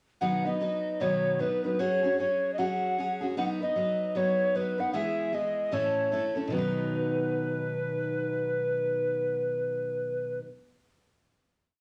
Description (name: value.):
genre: country.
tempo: 153 BPM.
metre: 4/4.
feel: swing 61% on 8ths.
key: B mixolydian.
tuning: A4 = 440 Hz.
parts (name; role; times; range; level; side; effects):
mellow hollow alto recorder; melody; 0.2-10.4 s; B4 to F#5; -31 LUFS; equal; cassette tape, plate reverb.
picked steel-string acoustic guitar; accompaniment; 0.2-10.5 s; A2 to B4; -34 LUFS; equal; cassette tape, plate reverb.
room: moderate small room reverb, RT60 0.5 s.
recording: home recording on cassette, small room reverb.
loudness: -29 LUFS.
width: mono.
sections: 0.2-6.5 interlude; 6.5-9.7 final chord.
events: none.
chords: 0.2 B; 1.8 F#sus2; 3.4 B/F#; 4.9 E; 5.7 A; 6.5 B.